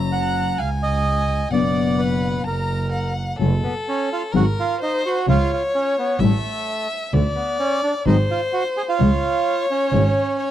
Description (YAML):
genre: tango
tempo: 129 BPM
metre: 4/4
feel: rubato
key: F# harmonic minor from 3.4 s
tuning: A4 = 436 Hz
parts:
  - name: rich violin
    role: second line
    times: 0.0-10.5 s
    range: A4 to A#5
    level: -24 LUFS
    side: left 2 dB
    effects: none
  - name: nylon-string guitar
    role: accompaniment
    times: 0.0-10.0 s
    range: B2 to G#4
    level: -21 LUFS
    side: left 6 dB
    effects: none
  - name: warm double bass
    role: bass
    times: 0.0-10.1 s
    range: F#1 to D2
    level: -21 LUFS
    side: right 2 dB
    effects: none
  - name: bandoneon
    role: melody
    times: 0.1-10.5 s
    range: A3 to F#5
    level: -24 LUFS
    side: right 4 dB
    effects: none
room: small room ambience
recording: dry, close 1970s-style studio recording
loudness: -18 LUFS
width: side -11 dB against mid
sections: 0.0-3.4 A section; 3.4-10.5 B section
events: none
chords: 0.0 F#; 0.6 C#5; 1.5 Bm/F#; 2.5 F#; 3.4 F#m; 4.3 G#7; 5.3 C#; 6.2 A7; 7.1 N.C.; 8.1 G#7; 9.0 C#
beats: 0.12 0.59 1.05 | 1.52 1.99 2.46 2.93 | 3.40 3.87 4.33 4.80 | 5.26 5.73 6.19 6.66 | 7.12 7.59 8.05 8.52 | 8.99 9.45 9.92 10.39